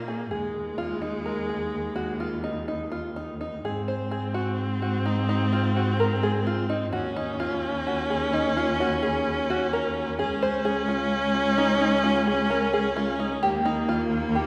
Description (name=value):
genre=contemporary instrumental, chamber music in an uneven meter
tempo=128 BPM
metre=7/4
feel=straight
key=Ab mixolydian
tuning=A4 = 438 Hz
part: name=bright viola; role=second line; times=0.0-14.5 s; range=Ab3 to Db4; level=-30 LUFS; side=equal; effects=none
part: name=dark cello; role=bass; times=0.0-14.5 s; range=Db2 to Bb2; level=-31 LUFS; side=equal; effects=none
part: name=open-back banjo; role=arpeggios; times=0.1-14.5 s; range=Eb4 to C5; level=-31 LUFS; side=equal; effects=none
room=wet scoring stage reverb, RT60 1.7 s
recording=recorded in a church or concert hall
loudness=-26 LUFS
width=mono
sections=0.0-3.6 A section; 3.6-14.5 B section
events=none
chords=0.3 Ebsus2; 3.6 Ab7; 6.9 Ebm7; 10.2 Db; 13.4 Eb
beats=| 0.32 0.79 1.26 1.73 2.20 2.68 3.16 | 3.64 4.11 4.59 5.06 5.53 6.00 6.46 | 6.93 7.40 7.87 8.33 8.80 9.26 9.73 | 10.19 10.65 11.12 11.58 12.04 12.51 12.97 | 13.43 13.89 14.36